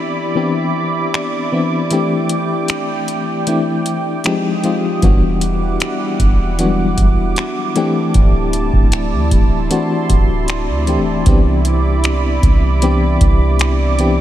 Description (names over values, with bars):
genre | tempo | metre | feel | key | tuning
contemporary R&B | 77 BPM | 4/4 | straight | unclear | A4 = 440 Hz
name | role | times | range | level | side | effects
FM electric piano with tremolo | accompaniment | 0.0-14.2 s | E3 to G4 | -18 LUFS | left 3 dB | none
warm analog pad | sustained chords | 0.0-14.2 s | G3 to Eb6 | -22 LUFS | right 4 dB | chorus, sidechain pumping
booming analog drum machine | drums | 1.1-14.2 s | finger snaps, hi-hat, kick drum | -17 LUFS | right 1 dB | none
soft 808-style bass | bass | 5.0-14.2 s | D1 to D2 | -17 LUFS | right 1 dB | none
room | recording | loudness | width
light reverb, digital ambience | none | -13 LUFS | side -12 dB against mid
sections
0.0-14.2 A section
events
break 0.0-5.0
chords
0.0 Cmaj9; 1.9 D9sus4; 4.2 Fm9; 5.0 Em9; 7.8 D9sus4; 11.3 Cmaj9